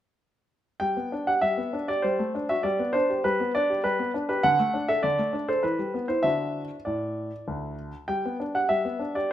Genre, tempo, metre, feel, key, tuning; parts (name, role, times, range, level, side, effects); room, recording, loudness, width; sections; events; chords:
classical-period piano sonatina; 99 BPM; 3/4; straight; G major; A4 = 438 Hz
clear grand piano; solo; 0.8-9.3 s; D2 to G5; -24 LUFS; equal
moderate recital hall reverb, RT60 1.5 s; minimal, uncompressed stereo recording; -24 LUFS; side -12 dB against mid
0.8-9.3 A section
0.8 G; 2.0 D7/G; 2.6 G; 4.4 D5; 5.6 Em; 6.2 D; 8.1 G